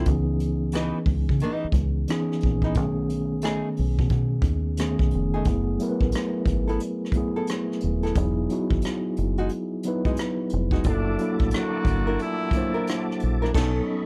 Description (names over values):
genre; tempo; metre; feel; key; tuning
R&B, neo-soul; 89 BPM; 4/4; swing 63% on 16ths; F# dorian; A4 = 440 Hz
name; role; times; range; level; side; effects
nylon-string guitar; second line; 0.0-13.8 s; E3 to A#4; -31 LUFS; equal; none
mellow tine electric piano; accompaniment; 0.0-14.1 s; D#3 to B#4; -29 LUFS; equal; none
deep dub fingered electric bass; bass; 0.0-13.8 s; D#1 to C#3; -28 LUFS; equal; none
vintage brush drum kit; drums; 0.1-13.8 s; crash cymbal, hi-hat, kick drum, rim click, snare drum; -29 LUFS; equal; none
tonewheel organ; sustained chords; 10.8-14.1 s; F#4 to D6; -39 LUFS; equal; slow rotary speaker, overdrive, chorus vibrato
warm horn section; stabs; 10.8-13.0 s; A#2 to F#4; -33 LUFS; equal; none
room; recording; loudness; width
little or no reverb; none; -25 LUFS; mono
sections
0.0-5.5 A section; 5.5-14.1 B section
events
band accent 13.5-14.1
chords
0.1 C#m9; 2.8 B13; 5.5 F#m11; 8.2 Emaj9; 10.8 F#7alt; 13.5 B9